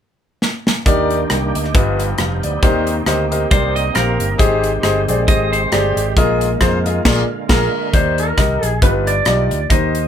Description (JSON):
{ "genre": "uptempo gospel", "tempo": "136 BPM", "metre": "4/4", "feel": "swing 56% on 8ths", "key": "Eb major", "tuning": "A4 = 443 Hz", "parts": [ { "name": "modern studio drum kit", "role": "drums", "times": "0.4-10.0 s", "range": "crash cymbal, hi-hat, kick drum, rim click, snare drum", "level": "-17 LUFS", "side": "equal", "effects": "none" }, { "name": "clear baby grand piano", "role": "accompaniment", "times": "0.9-10.1 s", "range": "G2 to G5", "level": "-18 LUFS", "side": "left 2 dB", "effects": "none" }, { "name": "overdriven tonewheel organ", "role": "sustained chords", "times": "0.9-7.9 s", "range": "D3 to G4", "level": "-24 LUFS", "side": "right 4 dB", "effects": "fast rotary speaker, chorus vibrato" }, { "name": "fingered electric bass", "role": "bass", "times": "0.9-10.1 s", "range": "F1 to F2", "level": "-20 LUFS", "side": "equal", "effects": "none" }, { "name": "clean electric guitar", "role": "second line", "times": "3.5-6.1 s", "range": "G4 to Eb5", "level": "-21 LUFS", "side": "right 2 dB", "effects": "none" }, { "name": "clean lap steel guitar", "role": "melody", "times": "7.5-10.1 s", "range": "Bb4 to Eb5", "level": "-20 LUFS", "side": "right 1 dB", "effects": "none" } ], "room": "light reverb", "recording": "band playing live in one room", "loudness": "-14 LUFS", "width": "side -9 dB against mid", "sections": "0.9-7.9 A section; 7.9-10.1 B section", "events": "drum fill 0.4-0.9; band accent 7.1-7.9", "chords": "0.0 N.C.; 0.9 Ebmaj7; 1.7 G7b13; 2.6 Cm7; 4.4 Abmaj7; 6.2 Bb7sus4; 7.1 Bb7; 7.9 Ebmaj7; 8.8 G7b13" }